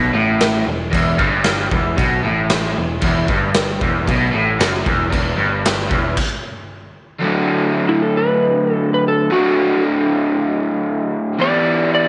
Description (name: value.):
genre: garage rock duo or trio.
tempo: 114 BPM.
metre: 4/4.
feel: straight.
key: E minor.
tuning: A4 = 440 Hz.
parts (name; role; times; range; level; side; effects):
crunchy overdriven guitar; riff; 0.0-12.1 s; E2 to G4; -20 LUFS; equal; none.
picked electric bass; bass; 0.0-6.2 s; E1 to B1; -26 LUFS; equal; none.
raw garage drum kit; drums; 0.4-6.3 s; crash cymbal, kick drum, snare drum; -22 LUFS; equal; none.
electric slide guitar; melody; 7.9-12.1 s; E4 to D5; -19 LUFS; equal; none.
room: light reverb, small room ambience.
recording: nothing above 10.9 kHz.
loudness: -17 LUFS.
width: mono.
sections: 0.0-7.2 A section; 7.2-12.1 B section.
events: stop 6.2-7.2.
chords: 0.0 Em; 7.2 D; 11.4 Em.